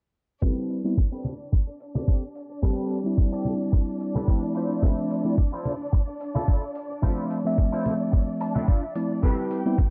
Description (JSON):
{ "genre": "nu-disco, nu disco", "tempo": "109 BPM", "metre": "4/4", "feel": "swing 54% on 16ths", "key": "A minor", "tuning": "A4 = 436 Hz", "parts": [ { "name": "mellow tine electric piano", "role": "accompaniment", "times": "0.4-9.8 s", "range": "F3 to E5", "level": "-29 LUFS", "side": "equal", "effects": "sidechain pumping, low-pass filter, tape echo" }, { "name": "warm studio violin section", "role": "sustained chords", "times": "0.4-9.9 s", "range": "D4 to G5", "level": "-38 LUFS", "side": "equal", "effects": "sidechain pumping" }, { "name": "electric guitar with an envelope filter", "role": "riff", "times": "0.4-9.6 s", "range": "C4 to A5", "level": "-37 LUFS", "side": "equal", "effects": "analog chorus, low-pass filter, tape echo" }, { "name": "electronic kick drum", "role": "drums", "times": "0.4-9.9 s", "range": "none", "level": "-24 LUFS", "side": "equal", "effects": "none" }, { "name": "congas", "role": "percussion", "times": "0.4-9.4 s", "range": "none", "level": "-33 LUFS", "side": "equal", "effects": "none" }, { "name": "electronic hi-hat", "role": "drums", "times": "0.7-9.6 s", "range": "none", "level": "-56 LUFS", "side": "equal", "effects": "none" } ], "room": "small room ambience", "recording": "low-pass filter, nothing above 10.3 kHz", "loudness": "-25 LUFS", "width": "mono", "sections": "0.4-9.9 A section", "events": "filter sweep on clean electric guitar 0.4-9.9; filter sweep on tine electric piano 0.4-9.9; filter sweep 0.4-9.9; clean electric guitar fill 8.1-9.2", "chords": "0.4 Am9; 4.6 Dm9; 9.2 Am9" }